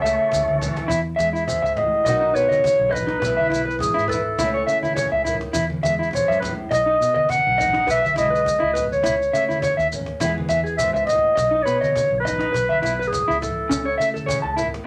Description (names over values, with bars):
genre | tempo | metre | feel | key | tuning
highlife guitar band | 103 BPM | 4/4 | swing 55% on 16ths | E major | A4 = 440 Hz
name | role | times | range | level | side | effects
nylon-string guitar | accompaniment | 0.0-14.9 s | E2 to G#4 | -34 LUFS | equal | none
percussive tonewheel organ | sustained chords | 0.0-0.9 s | E5 to C#6 | -33 LUFS | equal | slow rotary speaker, chorus vibrato
electric guitar through a small old amp | arpeggios | 0.0-14.7 s | C#4 to A5 | -25 LUFS | equal | harmonic tremolo
fingered electric bass | bass | 0.0-14.8 s | B1 to C#3 | -33 LUFS | equal | none
cajon | drums | 0.0-14.9 s | none | -38 LUFS | equal | none
maracas | percussion | 0.1-14.7 s | none | -37 LUFS | equal | none
congas | percussion | 0.3-14.7 s | none | -35 LUFS | equal | none
breathy clarinet | melody | 1.5-14.2 s | G#4 to F#5 | -22 LUFS | equal | none
room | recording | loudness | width
wet small room reverb, RT60 0.5 s | none | -21 LUFS | mono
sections
0.9-14.9 A section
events
none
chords
0.0 A/C#; 0.9 E; 2.1 B; 3.2 E/B; 4.4 A/C#; 5.5 E; 6.7 B; 7.9 E/B; 9.0 A/C#; 10.2 E; 11.4 B; 12.5 E5/B; 13.7 A/C#